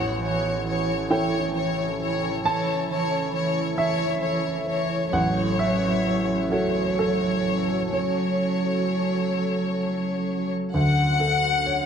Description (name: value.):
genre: neoclassical piano and strings.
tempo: 44 BPM (dotted quarters).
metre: 6/8.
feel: rubato.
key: unclear.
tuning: A4 = 440 Hz.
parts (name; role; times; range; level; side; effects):
rich chamber violin section; melody; 0.0-11.9 s; C#5 to F#5; -26 LUFS; left 2 dB; none.
dark cello; second line; 0.0-10.5 s; E3 to F#3; -27 LUFS; right 3 dB; none.
warm grand piano; accompaniment; 0.0-11.9 s; A1 to A5; -26 LUFS; right 1 dB; none.
deep dark ambient pad; sustained chords; 0.0-11.9 s; C#4 to A4; -33 LUFS; left 2 dB; chorus, built-in reverb.
room: moderate concert hall reverb, RT60 2.2 s.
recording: none.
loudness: -22 LUFS.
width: side -7 dB against mid.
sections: 0.0-10.7 A section; 10.7-11.9 B section.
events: none.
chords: 0.0 A7; 5.1 F#m7/A; 10.7 Dmaj7.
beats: 1.10 | 2.45 3.78 | 5.14 6.52 | 7.93 9.33 | 10.75.